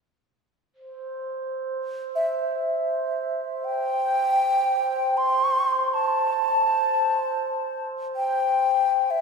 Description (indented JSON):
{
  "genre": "world meditative, free-time meditation music",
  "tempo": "free time",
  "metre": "none",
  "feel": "none",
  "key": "C major pentatonic",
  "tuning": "A4 = 440 Hz",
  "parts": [
    { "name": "glass harmonica", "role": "texture", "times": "0.7-9.0 s", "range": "C5", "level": "-30 LUFS", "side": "right 4 dB", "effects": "none" },
    { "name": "bright low xiao", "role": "melody", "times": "2.2-9.2 s", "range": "E5 to C6", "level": "-22 LUFS", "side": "left 1 dB", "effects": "none" }
  ],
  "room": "wet concert hall reverb, RT60 2.5 s",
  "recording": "none",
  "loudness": "-22 LUFS",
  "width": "side -4 dB against mid",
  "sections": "0.0-9.2 A section",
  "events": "none",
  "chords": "none"
}